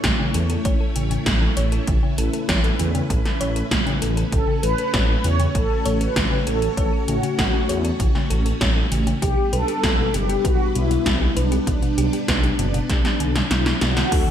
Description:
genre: synthwave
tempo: 98 BPM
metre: 4/4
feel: straight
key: unclear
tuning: A4 = 444 Hz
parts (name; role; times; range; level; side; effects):
- string machine, full ensemble; sustained chords; 0.0-14.3 s; G3 to D6; -28 LUFS; right 1 dB; ensemble chorus, sidechain pumping
- thumb-piano-like synth pluck; arpeggios; 0.0-14.3 s; B2 to C#5; -29 LUFS; left 2 dB; chorus, digital delay
- wide detuned saw bass; bass; 0.0-14.2 s; F#1 to E2; -23 LUFS; equal; chorus
- 80s electronic pad drums; drums; 0.0-14.2 s; crash cymbal, hi-hat, snare drum; -25 LUFS; equal; gated reverb
- electronic kick drum; drums; 0.0-14.2 s; none; -23 LUFS; equal; none
- mellow synth brass; melody; 4.3-14.3 s; D4 to C#5; -25 LUFS; left 1 dB; chorus, phaser, digital delay
- bell-like tine electric piano; stabs; 14.1-14.3 s; D3 to F#5; -26 LUFS; equal; lush chorus
room: light reverb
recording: bright 1980s-style digital production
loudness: -18 LUFS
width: side -9 dB against mid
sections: 0.0-14.1 A section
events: drum fill 12.9-14.1; kick drops out 13.5-14.1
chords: 0.0 A; 4.3 F#m/A; 9.2 G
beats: 0.04 0.65 1.26 | 1.88 2.49 3.10 3.71 | 4.33 4.94 5.55 6.16 | 6.77 7.39 8.00 8.61 | 9.22 9.84 10.45 11.06 | 11.67 12.28 12.90 13.51 | 14.12

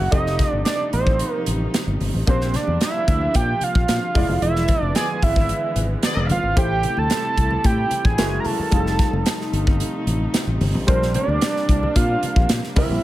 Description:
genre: polished 1980s jazz-funk pop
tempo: 112 BPM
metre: 4/4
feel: straight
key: unclear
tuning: A4 = 443 Hz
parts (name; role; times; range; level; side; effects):
- fat analog lead; melody; 0.0-13.0 s; C5 to Bb5; -23 LUFS; right 2 dB; ping-pong delay
- clear concert grand piano; accompaniment; 0.0-13.0 s; G3 to Fb5; -29 LUFS; left 1 dB; lush chorus
- warm studio string section; sustained chords; 0.0-13.0 s; C3 to Fb4; -29 LUFS; equal; none
- fingered electric bass; bass; 0.0-13.0 s; E1 to Bb2; -22 LUFS; equal; none
- modern studio drum kit; drums; 0.1-12.9 s; hi-hat, kick drum, snare drum; -21 LUFS; equal; none
- congas; percussion; 0.1-13.0 s; none; -32 LUFS; left 2 dB; none
- clear horn section; second line; 5.0-6.3 s; B3 to D5; -27 LUFS; left 1 dB; none
room: light reverb, small room reverb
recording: none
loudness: -18 LUFS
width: side -15 dB against mid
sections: 0.0-13.0 A section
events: band accent 4.4-6.6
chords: 0.1 F9; 2.3 Bb69; 4.2 E7b9; 6.6 Am7; 8.2 Gb9; 8.7 F9; 10.9 Bb69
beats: | 0.13 0.66 1.20 1.74 | 2.27 2.81 3.35 3.88 | 4.42 4.96 5.50 6.03 | 6.57 7.11 7.65 8.19 | 8.72 9.26 9.80 10.34 | 10.88 11.42 11.96 12.50

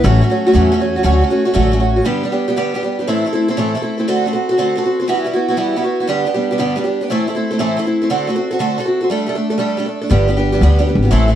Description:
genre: celtic folk, Celtic jig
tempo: 119 BPM (dotted quarters)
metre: 6/8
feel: straight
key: G major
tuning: A4 = 439 Hz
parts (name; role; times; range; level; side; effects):
- picked twelve-string acoustic guitar; accompaniment; 0.0-11.4 s; G2 to A4; -15 LUFS; right 1 dB; none
- upright bass; bass; 0.0-2.0, 10.1-11.4 s; G1 to E2; -14 LUFS; left 1 dB; none
room: moderate studio ambience, RT60 0.5 s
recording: dark, warm production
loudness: -14 LUFS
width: side -10 dB against mid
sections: 0.0-2.1 A section; 2.1-10.1 B section; 10.1-11.4 B section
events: none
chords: 0.0 A6; 1.1 Dmaj7; 2.1 G; 3.1 Am; 4.1 D7; 5.1 Emadd9; 6.1 G; 7.1 Am; 8.1 D7; 9.1 Gsus2; 10.1 G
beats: | 0.05 0.55 | 1.05 1.56 | 2.06 2.56 | 3.07 3.57 | 4.07 4.58 | 5.08 5.58 | 6.09 6.59 | 7.09 7.59 | 8.10 8.60 | 9.10 9.61 | 10.11 10.61 | 11.11

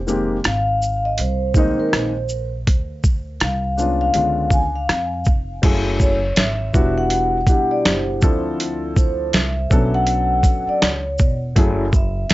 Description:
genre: hip hop, jazz-hop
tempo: 81 BPM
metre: 4/4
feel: swing 59% on 16ths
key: F# phrygian from 5.6 s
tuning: A4 = 442 Hz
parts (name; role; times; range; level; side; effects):
- upright bass; bass; 0.0-12.3 s; E1 to E#2; -24 LUFS; equal; none
- dark upright piano; accompaniment; 0.1-11.8 s; B2 to A4; -22 LUFS; left 2 dB; none
- boom bap sampler-style drum kit; drums; 0.1-12.3 s; crash cymbal, hi-hat, kick drum, rim click, shaker, snare drum; -17 LUFS; equal; none
- vibraphone with soft mallets; melody; 0.5-12.3 s; Bb4 to G#5; -22 LUFS; equal; tape echo
room: light reverb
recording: nothing above 7.7 kHz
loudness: -16 LUFS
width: side -17 dB against mid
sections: 0.0-5.6 A section; 5.6-12.3 B section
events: none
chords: 0.0 Fm11; 2.7 Dm7; 4.2 C#7b9; 5.6 F#m9; 6.7 Em9; 8.2 Dm9; 9.7 Bm9; 11.6 F#m9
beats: 0.45 1.19 1.93 | 2.67 3.41 4.15 4.89 | 5.63 6.38 7.12 7.86 | 8.60 9.34 10.08 10.82 | 11.56 12.30

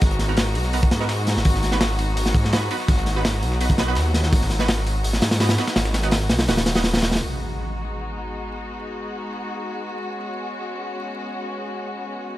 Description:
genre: drum and bass, jungle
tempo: 167 BPM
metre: 4/4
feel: straight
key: G# minor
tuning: A4 = 440 Hz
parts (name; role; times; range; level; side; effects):
- dark chamber string section; sustained chords; 0.0-12.4 s; F#3 to F#4; -29 LUFS; left 2 dB; none
- detuned saw bass; bass; 0.0-7.2 s; D#1 to G#2; -22 LUFS; equal; none
- crunchy breakbeat drum kit; drums; 0.0-7.2 s; hi-hat, kick drum, snare drum; -21 LUFS; equal; none
- dusty soul sampler-style drum kit; drums; 0.0-7.1 s; hi-hat, snare drum; -34 LUFS; equal; none
- orchestra-hit-like synth stab; stabs; 0.3-6.8 s; B3 to B4; -29 LUFS; right 4 dB; built-in reverb, cassette tape, dub echo
- impact; sound effects; 7.2-8.6 s; none; -31 LUFS; equal; none
room: little or no reverb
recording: vinyl crackle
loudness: -20 LUFS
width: side -15 dB against mid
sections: 0.0-7.2 A section; 7.2-12.4 B section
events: drop 0.0-7.2; impact 7.2-8.6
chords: 0.0 G#m7; 1.5 B/G#; 7.2 G#m7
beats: | 0.01 0.38 0.73 1.09 | 1.45 1.81 2.17 2.53 | 2.89 3.25 3.61 3.97 | 4.33 4.69 5.04 5.40 | 5.76 6.12 6.48 6.84 | 7.20 7.56 7.92 8.28 | 8.64 9.00 9.36 9.72 | 10.07 10.43 10.79 11.15 | 11.51 11.87 12.23

